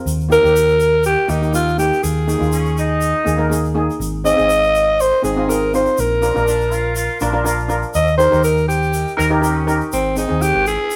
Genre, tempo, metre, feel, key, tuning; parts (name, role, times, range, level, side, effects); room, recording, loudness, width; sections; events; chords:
calypso; 122 BPM; 4/4; straight; Ab major; A4 = 440 Hz
steel pan; accompaniment; 0.0-10.8 s; Bb3 to Bb4; -24 LUFS; equal
hollow-body short-scale fingered electric bass; bass; 0.1-10.8 s; Ab1 to Eb2; -23 LUFS; equal
tube shaker; percussion; 0.1-11.0 s; -34 LUFS; equal
breathy alto saxophone; melody; 0.3-11.0 s; C4 to Eb5; -18 LUFS; equal; delay
dark horn section; second line; 2.5-9.9 s; Db4 to Bb4; -25 LUFS; equal
light reverb; band playing live in one room; -16 LUFS; mono
0.0-9.9 A section; 9.9-11.0 B section
alto saxophone solo 0.0-9.9
0.1 Eb; 2.0 Ebsus4; 4.0 Ab; 6.0 Bb; 8.0 Eb7; 9.9 Ab